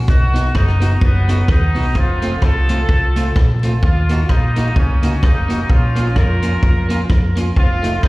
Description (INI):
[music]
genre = ska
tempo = 128 BPM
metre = 4/4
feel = swing 57% on 8ths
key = Bb minor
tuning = A4 = 445 Hz
[part]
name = clear horn section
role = melody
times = 0.1-8.1 s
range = F#3 to Bb4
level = -22 LUFS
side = equal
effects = dub echo
[part]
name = hollow-body short-scale fingered electric bass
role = bass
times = 0.1-8.1 s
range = F1 to F2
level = -16 LUFS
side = equal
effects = none
[part]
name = swinging big-band drum kit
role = drums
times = 0.1-8.1 s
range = hi-hat, kick drum, rim click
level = -16 LUFS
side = equal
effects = none
[part]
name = clean electric guitar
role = accompaniment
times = 0.3-7.9 s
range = A3 to F#4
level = -24 LUFS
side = right 1 dB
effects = plate reverb, slapback echo
[sound]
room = little or no reverb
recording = live gig heard through the venue's PA, recital hall reverb, vinyl crackle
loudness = -13 LUFS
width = side -21 dB against mid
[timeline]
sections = 0.0-8.1 A section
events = none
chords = 0.1 B; 2.0 F; 3.8 Ebm; 5.7 Bbm; 7.6 F7